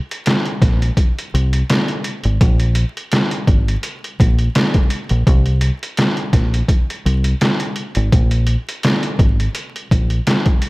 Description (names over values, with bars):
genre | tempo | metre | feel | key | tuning
hip hop, boom-bap hip-hop | 84 BPM | 4/4 | swing 54% on 16ths | unclear | A4 = 436 Hz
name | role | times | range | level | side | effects
trip hop sampler-style drum kit | drums | 0.1-10.7 s | hi-hat, kick drum, snare drum | -16 LUFS | equal | overdrive
deep dub fingered electric bass | bass | 0.6-10.2 s | Ab1 to C2 | -16 LUFS | equal | none
room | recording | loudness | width
light reverb | vinyl crackle | -14 LUFS | side -22 dB against mid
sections
0.0-10.7 A section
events
none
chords
none